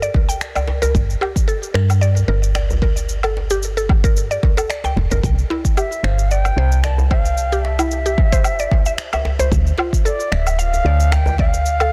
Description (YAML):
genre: organic downtempo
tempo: 112 BPM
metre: 4/4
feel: swing 54% on 16ths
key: G dorian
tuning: A4 = 438 Hz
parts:
  - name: mallet-like synth pluck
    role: arpeggios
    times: 0.0-11.9 s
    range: E4 to G5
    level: -26 LUFS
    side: equal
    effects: chorus, delay
  - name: woody FM bass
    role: bass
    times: 0.0-11.9 s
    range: D1 to G2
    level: -20 LUFS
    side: equal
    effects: none
  - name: electronic cabasa, finger snaps and woodblock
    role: drums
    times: 0.0-11.9 s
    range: none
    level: -29 LUFS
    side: equal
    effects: soft clipping on snare
  - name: electronic kick drum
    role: drums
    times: 0.1-11.5 s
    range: none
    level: -19 LUFS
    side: equal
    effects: none
  - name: djembe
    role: percussion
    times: 0.1-11.6 s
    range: none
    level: -27 LUFS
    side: equal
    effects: none
  - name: bright bansuri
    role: melody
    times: 5.8-11.9 s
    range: D5 to A5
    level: -26 LUFS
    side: equal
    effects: digital delay
room: digital ambience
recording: dense, heavily limited modern master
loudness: -18 LUFS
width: mono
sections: 0.0-11.9 A section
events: none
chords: 0.0 Gm; 5.2 C; 9.5 Dm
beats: 0.41 | 0.95 1.48 2.02 2.56 | 3.09 3.63 4.16 4.70 | 5.23 5.77 6.30 6.84 | 7.38 7.91 8.45 8.98 | 9.52 10.05 10.59 11.13 | 11.66